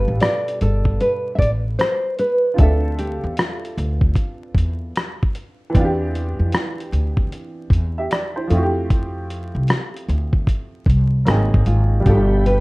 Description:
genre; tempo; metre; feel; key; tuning
lo-fi hip hop; 76 BPM; 4/4; swing 64% on 16ths; D dorian; A4 = 440 Hz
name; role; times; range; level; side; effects
nylon-string guitar; melody; 0.0-5.3, 11.7-12.6 s; F4 to E5; -22 LUFS; equal; low-pass filter
clear upright piano; accompaniment; 0.0-12.6 s; B2 to E5; -25 LUFS; right 1 dB; cassette tape, low-pass filter
upright bass; bass; 0.0-12.6 s; G1 to F2; -18 LUFS; equal; none
dusty soul sampler-style drum kit; drums; 0.2-12.6 s; hi-hat, kick drum, rim click; -19 LUFS; equal; none
ensemble organ-string; sustained chords; 12.1-12.6 s; G4 to B5; -26 LUFS; right 1 dB; ensemble chorus, low-pass filter
room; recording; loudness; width
moderate studio reverb, RT60 0.6 s; rough home demo mix, vinyl crackle; -17 LUFS; side -23 dB against mid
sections
0.0-12.6 A section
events
none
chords
0.0 G7; 2.6 Dm7; 5.7 Cmaj7; 8.5 Fmaj7; 11.3 G#9; 12.1 G7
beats
0.21 1.00 1.79 | 2.58 3.37 4.16 4.95 | 5.74 6.53 7.32 8.11 | 8.90 9.69 10.48 11.27 | 12.06

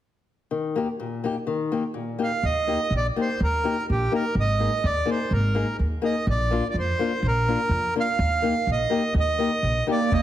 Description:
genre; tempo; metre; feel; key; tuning
alpine folk, alpine dance band; 125 BPM; 2/4; straight; Eb major; A4 = 439 Hz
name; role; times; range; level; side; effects
fingerpicked acoustic archtop guitar; accompaniment; 0.5-10.0 s; Bb2 to Ab4; -27 LUFS; left 4 dB; none
accordion; melody; 2.2-10.2 s; G4 to F5; -25 LUFS; right 3 dB; none
upright bass; bass; 2.4-10.2 s; Ab1 to F2; -24 LUFS; equal; none
warm clarinet; second line; 9.9-10.2 s; Bb3; -24 LUFS; right 7 dB; none
kick drum; drums; 10.1-10.2 s; none; -24 LUFS; equal; none
room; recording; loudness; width
moderate recital hall reverb, RT60 1.7 s; heavily compressed radio sound; -22 LUFS; side -12 dB against mid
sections
0.5-2.4 A section; 2.4-10.1 B section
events
none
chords
0.5 Eb; 4.4 Absus2; 6.3 Bb; 8.2 Eb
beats
| 0.50 0.99 | 1.47 1.95 | 2.43 2.92 | 3.40 3.88 | 4.36 4.83 | 5.31 5.79 | 6.28 6.76 | 7.24 7.71 | 8.19 8.67 | 9.14 9.63 | 10.11

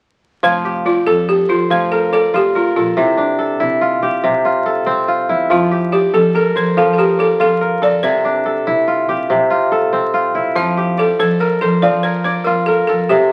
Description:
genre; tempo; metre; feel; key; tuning
west african traditional, West African string and xylophone music; 95 BPM (dotted quarters); 12/8; straight; F major; A4 = 440 Hz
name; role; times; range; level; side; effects
balafon; melody; 0.4-13.3 s; E4 to F5; -18 LUFS; equal; none
kora; arpeggios; 0.4-13.3 s; C3 to D5; -18 LUFS; equal; none
upright bass; bass; 0.4-13.3 s; F1 to F3; -26 LUFS; equal; none
room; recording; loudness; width
moderate studio reverb, RT60 0.5 s; very old 78 rpm record, vinyl crackle; -15 LUFS; mono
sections
0.4-13.3 A section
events
none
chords
0.4 F; 3.0 C; 5.5 F; 8.0 C; 10.6 F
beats
| 0.43 1.06 1.70 2.33 | 2.97 3.60 4.24 4.87 | 5.50 6.14 6.77 7.40 | 8.04 8.67 9.30 9.93 | 10.56 11.20 11.83 12.46 | 13.10

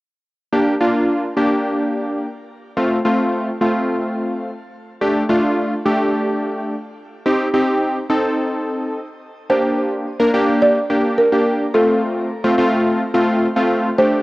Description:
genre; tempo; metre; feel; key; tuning
pop; 107 BPM; 4/4; straight; G minor; A4 = 440 Hz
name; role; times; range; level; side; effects
warm analog keys; accompaniment; 0.5-14.2 s; A3 to Bb4; -16 LUFS; equal; chorus, cassette tape, shimmer reverb
buzzing marimba with medium mallets; melody; 9.5-14.2 s; A4 to D5; -18 LUFS; right 1 dB; cassette tape, shimmer reverb, tape echo
room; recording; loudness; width
moderate spring reverb, RT60 1.6 s; home recording on cassette; -16 LUFS; side -19 dB against mid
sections
0.5-9.5 A section; 9.5-14.2 B section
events
none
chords
0.5 Gm; 2.8 F; 5.0 Dsus4; 7.3 Cm; 9.5 Gm; 11.7 F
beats
| 0.53 1.09 1.65 2.21 | 2.77 3.33 3.89 4.45 | 5.01 5.57 6.13 6.70 | 7.25 7.82 8.38 8.94 | 9.50 10.06 10.62 11.18 | 11.74 12.30 12.86 13.42 | 13.98

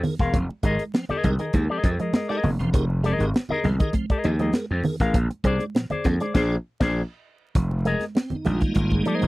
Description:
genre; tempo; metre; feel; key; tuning
funk; 100 BPM; 4/4; straight; F dorian; A4 = 440 Hz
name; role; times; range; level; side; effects
electric guitar with an envelope filter; riff; 0.0-9.3 s; Eb3 to C4; -29 LUFS; right 3 dB; none
tonewheel organ; stabs; 0.0-9.3 s; Bb2 to C5; -30 LUFS; right 2 dB; chorus vibrato, slow rotary speaker
tight funk drum kit; drums; 0.0-9.3 s; crash cymbal, hi-hat, kick drum, snare drum; -23 LUFS; equal; none
congas; percussion; 0.0-9.3 s; none; -32 LUFS; right 2 dB; none
electric guitar with an envelope filter; accompaniment; 0.2-9.3 s; Ab4 to F5; -26 LUFS; left 3 dB; none
gritty slap bass; bass; 0.2-9.3 s; E1 to F2; -23 LUFS; equal; overdrive
room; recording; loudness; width
little or no reverb; dry, close 1970s-style studio recording, vinyl crackle; -21 LUFS; side -19 dB against mid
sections
0.0-7.6 A section; 7.6-9.3 B section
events
band accent 6.3-7.6; tonewheel organ solo 7.6-9.3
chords
0.0 Fm11; 5.1 Bb9; 7.6 Fm11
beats
| 0.34 0.94 1.54 2.14 | 2.74 3.34 3.94 4.54 | 5.14 5.75 6.35 6.95 | 7.55 8.16 8.76

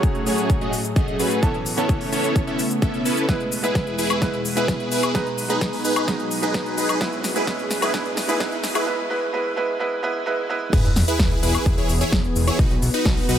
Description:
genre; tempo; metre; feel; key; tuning
EDM, festival progressive house; 129 BPM; 4/4; straight; E major; A4 = 440 Hz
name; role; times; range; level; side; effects
clear grand piano; accompaniment; 0.0-10.8 s; E3 to B4; -26 LUFS; right 3 dB; sidechain pumping, digital delay
lush unison pad; sustained chords; 0.0-13.4 s; E2 to G#4; -29 LUFS; equal; chorus, sidechain pumping
supersaw chords; riff; 0.0-13.4 s; A3 to E5; -24 LUFS; equal; sidechain pumping, low-pass filter, digital delay
big-room dance drum kit; drums; 0.0-13.4 s; crash cymbal, hi-hat, shaker, snare drum, woodblock; -27 LUFS; left 2 dB; overdrive
electronic kick drum; drums; 0.0-13.1 s; none; -22 LUFS; equal; overdrive
riser, swell and sub drop; sound effects; 4.9-12.6 s; none; -32 LUFS; right 1 dB; none
fat analog bass; bass; 10.7-13.4 s; E1 to B1; -23 LUFS; equal; sidechain pumping
room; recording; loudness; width
light reverb, digital ambience; high-pass filter; -19 LUFS; side -10 dB against mid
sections
0.0-10.7 A section; 10.7-13.4 B section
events
build-up 0.0-10.7; filter sweep on analog synth pad 0.0-10.7; drum fill 3.3-8.9; swell 10.0-10.7; drop 10.7-13.4; impact 10.7-12.6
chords
0.0 F#madd9/A; 1.4 Aadd9; 3.3 E; 5.1 B; 7.0 F#madd9/A; 8.9 E/G#; 10.7 E; 12.6 B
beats
0.03 0.50 0.96 | 1.43 1.89 2.36 2.82 | 3.29 3.75 4.22 4.68 | 5.15 5.61 6.08 6.54 | 7.01 7.47 7.94 8.40 | 8.87 9.34 9.80 10.27 | 10.73 11.20 11.66 12.12 | 12.59 13.06

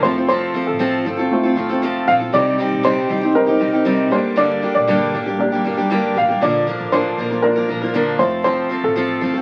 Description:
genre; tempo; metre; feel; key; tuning
acoustic pop; 118 BPM; 4/4; straight; unclear; A4 = 441 Hz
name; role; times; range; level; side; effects
clear upright piano; melody; 0.0-9.3 s; A4 to F5; -21 LUFS; equal; none
felt-muted upright piano; accompaniment; 0.0-9.4 s; G3 to D5; -28 LUFS; equal; none
picked steel-string acoustic guitar; accompaniment; 0.0-9.4 s; G2 to Bb4; -21 LUFS; equal; none
open-back banjo; arpeggios; 0.0-9.4 s; D3 to G4; -32 LUFS; equal; none
upright bass; bass; 0.0-9.4 s; F1 to C2; -36 LUFS; equal; none
room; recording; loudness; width
moderate studio reverb, RT60 0.5 s; very old 78 rpm record, vinyl crackle; -18 LUFS; mono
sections
0.0-9.4 A section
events
none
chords
0.0 F; 2.3 Cm; 4.1 Gm; 6.4 Bb; 8.2 F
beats
| 0.29 0.80 1.31 1.82 | 2.33 2.84 3.35 3.86 | 4.37 4.88 5.39 5.91 | 6.42 6.92 7.43 7.94 | 8.45 8.96

